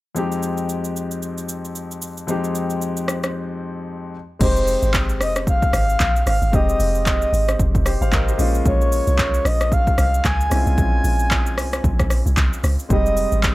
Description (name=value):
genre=amapiano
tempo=113 BPM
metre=4/4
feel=swing 58% on 16ths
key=F minor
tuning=A4 = 440 Hz
part: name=warm concert grand piano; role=accompaniment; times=0.1-13.5 s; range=F2 to F5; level=-26 LUFS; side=left 2 dB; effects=none
part: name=deep house drum kit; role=drums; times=0.2-13.5 s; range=crash cymbal, handclaps, hi-hat, kick drum, rim click, shaker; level=-21 LUFS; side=equal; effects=none
part: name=breathy flute-like synth lead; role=melody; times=4.4-13.4 s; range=C5 to Ab5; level=-22 LUFS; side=equal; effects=chorus, tremolo, analog delay
part: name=deep log drum bass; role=bass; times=4.4-13.5 s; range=F1 to Db2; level=-20 LUFS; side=equal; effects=none
room=little or no reverb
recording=dry, gritty hardware recording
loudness=-17 LUFS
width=side -18 dB against mid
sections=0.2-4.4 A section; 4.4-13.5 B section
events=break 3.3-4.4; drop 4.4-13.5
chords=0.2 Fm7; 4.1 N.C.; 4.4 Fm7; 8.4 Bbm9; 12.9 Fm7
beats=| 0.16 0.69 1.22 1.75 | 2.28 2.81 3.35 3.88 | 4.41 4.94 5.47 6.00 | 6.53 7.06 7.59 8.12 | 8.65 9.19 9.72 10.25 | 10.78 11.31 11.84 12.37 | 12.90 13.43